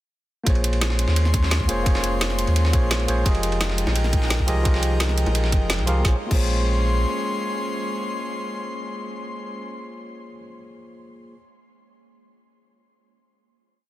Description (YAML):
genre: liquid drum and bass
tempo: 172 BPM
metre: 4/4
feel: straight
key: Bb dorian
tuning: A4 = 441 Hz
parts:
  - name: mellow tine electric piano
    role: accompaniment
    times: 0.4-11.4 s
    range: F3 to F5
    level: -28 LUFS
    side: equal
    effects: vintage 12-bit sampler grit, digital delay
  - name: airy breathy pad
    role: sustained chords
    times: 0.6-9.6 s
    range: Ab3 to C6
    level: -30 LUFS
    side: left 1 dB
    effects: chorus
  - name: warm sub bass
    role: bass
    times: 0.5-7.1 s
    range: F1 to Eb2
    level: -22 LUFS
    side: equal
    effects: none
  - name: drum and bass drum kit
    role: drums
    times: 0.5-6.4 s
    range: crash cymbal, hi-hat, snare drum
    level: -29 LUFS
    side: equal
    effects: none
  - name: dusty soul sampler-style drum kit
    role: drums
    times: 0.5-6.0 s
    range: ride cymbal, snare drum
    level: -30 LUFS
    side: right 1 dB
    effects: high-pass filter on cymbals, high-pass filter on snare, high-pass filter on room
  - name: electronic kick drum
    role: drums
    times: 0.5-6.4 s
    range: none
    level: -20 LUFS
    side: equal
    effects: none
  - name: bongos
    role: percussion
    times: 3.9-5.3 s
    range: none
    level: -32 LUFS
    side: equal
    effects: none
room: digital ambience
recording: dense, heavily limited modern master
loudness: -19 LUFS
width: side -15 dB against mid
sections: 0.5-6.0 drop; 6.0-8.8 final chord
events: drop 0.5-6.0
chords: 0.5 Bbm9; 3.3 Fm11; 6.0 Bbm9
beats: | 0.47 0.81 1.16 1.51 | 1.86 2.21 2.56 2.91 | 3.26 3.60 3.95 4.30 | 4.65 5.00 5.35 5.70 | 6.05 6.40 6.75 7.09 | 7.44 7.79 8.14 8.49